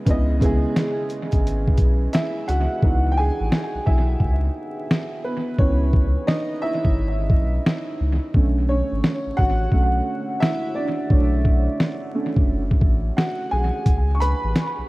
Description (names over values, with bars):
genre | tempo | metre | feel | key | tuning
lo-fi hip hop | 87 BPM | 4/4 | swing 65% on 16ths | C# phrygian | A4 = 437 Hz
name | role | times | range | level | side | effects
warm upright piano | accompaniment | 0.0-14.9 s | C#3 to C#6 | -24 LUFS | right 1 dB | cassette tape, analog delay
saturated sub bass | bass | 0.1-14.8 s | F#1 to C#2 | -22 LUFS | equal | none
boom bap sampler-style drum kit | drums | 0.1-14.8 s | hi-hat, kick drum, snare drum | -20 LUFS | equal | analog delay
room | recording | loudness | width
little or no reverb | echo-heavy mix, vinyl crackle | -18 LUFS | side -20 dB against mid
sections
0.0-2.8 A section; 2.8-14.9 B section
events
hi-hats muted 2.8-13.9; upright piano solo 2.8-14.9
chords
0.0 C#m9; 8.3 Bm9; 13.9 C#7(no3)